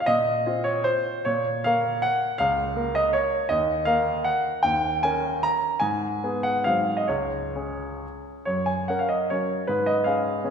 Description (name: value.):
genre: classical, romantic triple-time dance for piano with dotted rhythms.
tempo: 122-175 BPM.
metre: 3/4.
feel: rubato.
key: Bb minor, F# major from 3.5 s.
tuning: A4 = 440 Hz.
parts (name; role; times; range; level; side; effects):
clear baby grand piano; solo; 0.0-10.5 s; Db2 to A#5; -22 LUFS; equal; none.
room: wet concert hall reverb, RT60 2.0 s.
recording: recorded in a church or concert hall.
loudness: -22 LUFS.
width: side -7 dB against mid.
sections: 0.0-8.5 A section; 8.5-10.5 B section.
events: none.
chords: 0.1 F5/Bb; 1.2 N.C.; 2.4 Bbm/Db; 3.5 D#m; 4.6 D#7; 5.8 G#m; 6.7 G#7; 7.1 C#5; 8.5 F#; 9.7 C#7/G#.